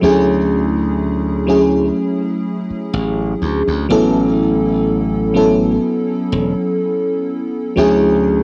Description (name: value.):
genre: vaporwave.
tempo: 62 BPM.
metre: 4/4.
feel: straight.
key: A major.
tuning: A4 = 435 Hz.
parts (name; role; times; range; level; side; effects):
FM electric piano with soft pad layer; accompaniment; 0.0-8.4 s; F#3 to A4; -17 LUFS; equal; subtle chorus, cassette tape, tape echo.
glassy slap bass; bass; 0.0-8.4 s; E1 to D2; -22 LUFS; equal; none.
room: light reverb.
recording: home recording on cassette.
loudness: -16 LUFS.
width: mono.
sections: 0.0-8.4 A section.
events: none.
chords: 0.0 Dmaj9#11; 3.9 A69; 7.8 Dmaj9#11.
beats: | 0.03 1.00 1.97 2.94 | 3.90 4.87 5.84 6.81 | 7.78.